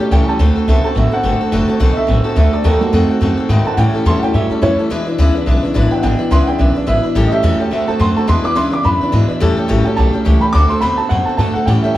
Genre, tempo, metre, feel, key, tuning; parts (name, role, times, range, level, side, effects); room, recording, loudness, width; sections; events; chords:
rockabilly; 213 BPM; 4/4; swing 59% on 8ths; A4 = 441 Hz
picked steel-string acoustic guitar; accompaniment; 0.0-12.0 s; A2 to B4; -19 LUFS; left 3 dB
electric guitar through a small old amp; riff; 0.0-12.0 s; E2 to B#3; -20 LUFS; right 3 dB
dark upright piano; melody; 0.1-12.0 s; A3 to D6; -18 LUFS; right 2 dB
upright bass; bass; 0.1-11.9 s; F#1 to A2; -15 LUFS; equal
moderate large studio reverb, RT60 0.9 s; band playing live in one room; -12 LUFS; side -14 dB against mid
0.0-9.4 A section; 9.4-12.0 B section
upright piano solo 0.0-9.4
0.4 D7; 2.6 D#dim7; 3.8 A7; 4.9 E7; 7.2 A7; 7.7 D7; 8.3 E7; 9.4 A7; 10.5 D7